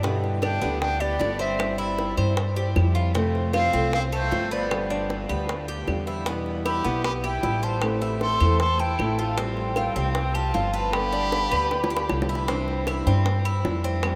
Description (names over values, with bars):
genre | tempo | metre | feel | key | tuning
latin, Cuban son and guajira | 154 BPM | 4/4 | straight | C major | A4 = 440 Hz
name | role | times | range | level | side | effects
fingerpicked steel-string acoustic guitar | accompaniment | 0.0-14.2 s | B2 to G4 | -33 LUFS | equal | none
Cuban tres | arpeggios | 0.0-14.2 s | B3 to C5 | -32 LUFS | equal | none
upright bass | bass | 0.0-14.2 s | G1 to G2 | -29 LUFS | equal | none
bongos | percussion | 0.0-14.2 s | none | -35 LUFS | equal | none
hollow concert flute | melody | 0.4-12.1 s | C5 to C6 | -31 LUFS | equal | none
brilliant trumpet | second line | 0.4-12.1 s | A3 to A4 | -38 LUFS | equal | none
claves | percussion | 0.4-14.2 s | none | -42 LUFS | equal | none
room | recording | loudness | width
wet huge ambient reverb, RT60 8.2 s | in a vast, echoing space | -24 LUFS | mono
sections
0.0-12.5 A section; 12.5-14.2 B section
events
drum fill 11.7-12.5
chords
0.0 G; 1.6 C/G; 3.2 F; 4.7 G; 6.3 Em; 7.8 Am; 9.4 Fadd9/A; 10.9 G; 12.5 Cadd9